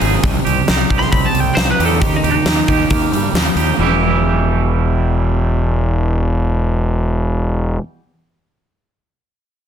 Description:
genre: quiet-loud alternative rock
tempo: 134 BPM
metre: 4/4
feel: straight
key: E harmonic minor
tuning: A4 = 437 Hz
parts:
  - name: twangy electric guitar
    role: arpeggios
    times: 0.0-7.8 s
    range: E2 to G#4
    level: -20 LUFS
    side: right 8 dB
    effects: harmonic tremolo, slapback echo
  - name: fuzz fingered electric bass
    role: bass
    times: 0.0-7.8 s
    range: E1 to G2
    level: -17 LUFS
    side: left 1 dB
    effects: overdrive
  - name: huge arena drum kit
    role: drums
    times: 0.0-3.7 s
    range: hi-hat, kick drum, snare drum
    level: -17 LUFS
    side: left 1 dB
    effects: none
  - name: lightly driven lead guitar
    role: melody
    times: 1.0-3.2 s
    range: D#4 to C6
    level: -19 LUFS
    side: right 1 dB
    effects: slapback echo
room: light reverb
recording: dense, heavily limited modern master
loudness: -13 LUFS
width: side -8 dB against mid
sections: 0.0-3.8 A section; 3.8-7.4 B section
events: lead electric guitar solo 0.0-3.8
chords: 0.2 Cm; 2.0 D#; 3.8 Em

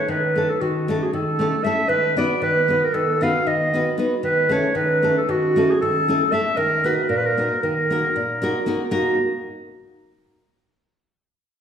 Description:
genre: balkan folk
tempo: 231 BPM (eighths)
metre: 9/8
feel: straight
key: unclear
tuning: A4 = 440 Hz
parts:
  - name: warm clarinet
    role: melody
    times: 0.0-9.2 s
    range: Gb4 to F5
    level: -20 LUFS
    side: right 1 dB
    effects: none
  - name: nylon-string guitar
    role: accompaniment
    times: 0.1-9.2 s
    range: Bb2 to B4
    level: -22 LUFS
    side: left 1 dB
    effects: none
room: wet recital hall reverb, RT60 1.5 s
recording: heard from further back in the room, lossy compression artefacts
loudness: -18 LUFS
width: side -8 dB against mid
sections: 0.0-8.9 A section; 8.9-11.2 B section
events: none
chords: 0.0 A/Eb; 1.9 B/D#; 4.2 A/Eb; 6.6 Ebm

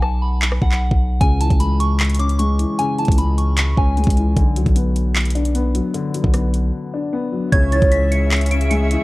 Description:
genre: hip hop, trap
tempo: 152 BPM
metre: 4/4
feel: half-time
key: C# phrygian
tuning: A4 = 440 Hz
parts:
  - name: soft synth bell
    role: melody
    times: 0.0-4.3, 7.5-9.0 s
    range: F#5 to D7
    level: -24 LUFS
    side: equal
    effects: chorus, phaser, cassette tape, analog delay
  - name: long sustained 808-style bass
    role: bass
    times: 0.0-9.0 s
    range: B1 to C#2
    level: -18 LUFS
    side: equal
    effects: none
  - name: trap drum kit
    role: drums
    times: 0.0-9.0 s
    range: handclaps, hi-hat, kick drum, rim click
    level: -19 LUFS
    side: equal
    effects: none
  - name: dark concert grand piano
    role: accompaniment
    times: 1.2-9.0 s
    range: C#3 to D4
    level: -22 LUFS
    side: left 3 dB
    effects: cassette tape
  - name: warm velvety synth lead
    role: second line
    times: 7.5-8.3 s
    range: C#5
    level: -22 LUFS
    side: right 2 dB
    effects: chorus, cassette tape, analog delay
  - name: muted studio string section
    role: sustained chords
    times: 7.5-9.0 s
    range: C#3 to E5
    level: -26 LUFS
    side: equal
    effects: cassette tape
room: little or no reverb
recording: home recording on cassette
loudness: -15 LUFS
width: side -19 dB against mid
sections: 0.0-7.5 A section; 7.5-9.0 B section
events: break 0.0-1.2, 4.4-7.5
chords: 0.0 B5; 1.2 C#m; 4.4 Bm; 7.5 C#m

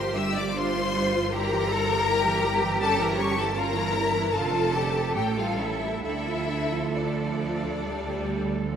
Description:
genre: classical, slow romantic movement for string orchestra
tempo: 66-81 BPM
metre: 4/4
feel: rubato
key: D minor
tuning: A4 = 440 Hz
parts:
  - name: rich symphonic violin section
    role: melody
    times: 0.0-8.8 s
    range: D5 to E6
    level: -30 LUFS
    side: left 5 dB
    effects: none
  - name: clear studio violin section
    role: second line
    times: 0.0-8.8 s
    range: D4 to E5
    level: -29 LUFS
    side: left 2 dB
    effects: none
  - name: clear symphonic viola section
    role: accompaniment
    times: 0.0-8.8 s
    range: D3 to G4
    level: -31 LUFS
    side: right 1 dB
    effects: none
  - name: rich chamber double bass section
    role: bass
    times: 0.0-8.8 s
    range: F1 to D2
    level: -31 LUFS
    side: right 4 dB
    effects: none
  - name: rich symphonic cello section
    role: bass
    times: 0.0-8.8 s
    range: E4 to A4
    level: -32 LUFS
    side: right 6 dB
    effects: none
room: wet cathedral reverb, RT60 6.2 s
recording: in a vast, echoing space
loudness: -23 LUFS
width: side -8 dB against mid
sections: 0.0-8.8 A section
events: none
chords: 0.0 G5; 1.3 Edim/G; 2.8 A7b9b13/G; 4.3 Dm/F; 5.2 A7; 6.0 Dm

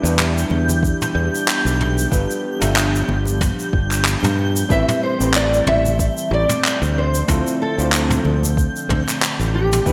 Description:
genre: sunset chillout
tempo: 93 BPM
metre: 4/4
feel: swing 56% on 16ths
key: D dorian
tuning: A4 = 442 Hz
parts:
  - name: hollow-body jazz guitar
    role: accompaniment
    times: 0.0-9.9 s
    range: C4 to E5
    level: -29 LUFS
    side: equal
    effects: vintage 12-bit sampler grit, low-pass filter, delay
  - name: airy breathy pad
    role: sustained chords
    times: 0.0-9.9 s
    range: D3 to G4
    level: -28 LUFS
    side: equal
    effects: chorus
  - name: fingered electric bass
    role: bass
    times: 0.0-9.9 s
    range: G1 to G2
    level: -22 LUFS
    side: equal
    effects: none
  - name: twinkling granular texture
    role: texture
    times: 0.1-9.9 s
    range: G6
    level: -32 LUFS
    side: equal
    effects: built-in reverb, lush chorus
  - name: jazz brush drum kit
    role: drums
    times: 0.1-9.9 s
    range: handclaps, shaker, toms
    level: -24 LUFS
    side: equal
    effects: gated reverb
  - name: congas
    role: percussion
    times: 0.5-8.5 s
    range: none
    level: -32 LUFS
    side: equal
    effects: none
  - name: electronic kick drum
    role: drums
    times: 0.8-9.9 s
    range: none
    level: -23 LUFS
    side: equal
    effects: none
  - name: nylon-string guitar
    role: melody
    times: 4.7-9.9 s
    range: G4 to E5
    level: -24 LUFS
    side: equal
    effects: ensemble chorus, delay
room: moderate plate reverb, RT60 1.8 s, small room ambience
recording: bright 1980s-style digital production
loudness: -18 LUFS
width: mono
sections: 0.0-9.9 A section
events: none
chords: 0.0 Em7; 2.1 G7; 4.7 Am7; 7.0 Dm7

